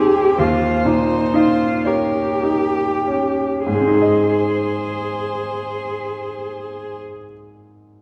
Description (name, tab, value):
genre	classical, slow romantic movement for piano trio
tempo	30-44 BPM (dotted quarters)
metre	12/8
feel	rubato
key	Ab major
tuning	A4 = 440 Hz
part	rich violin	melody	0.0-7.0 s	Ab4 to C5	-28 LUFS	equal	none
part	rich cello	second line	0.0-7.0 s	Eb4 to Ab4	-23 LUFS	equal	none
part	bright grand piano	accompaniment	0.0-8.0 s	Eb2 to Eb5	-22 LUFS	equal	none
room	wet recital hall reverb, RT60 1.5 s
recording	heard from further back in the room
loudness	-19 LUFS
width	mono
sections	0.0-3.7 A section; 3.7-8.0 B section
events	slowing down 0.0-3.7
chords	0.4 Eb7; 3.7 Ab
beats	0.39 1.86 | 3.67 5.28 6.94